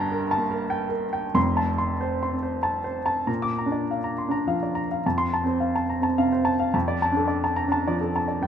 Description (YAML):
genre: neoclassical minimalist piano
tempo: 91-108 BPM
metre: 3/4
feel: rubato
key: Bb major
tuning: A4 = 435 Hz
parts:
  - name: warm upright piano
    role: solo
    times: 0.0-8.5 s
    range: F1 to D6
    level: -22 LUFS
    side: equal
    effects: none
room: moderate concert hall reverb, RT60 2.3 s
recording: minimal, uncompressed stereo recording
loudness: -22 LUFS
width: side -8 dB against mid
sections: 0.0-3.3 A section; 3.3-8.5 B section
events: none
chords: 0.0 Gmadd9; 1.4 F; 3.3 Bb; 5.0 F; 6.7 Dm/F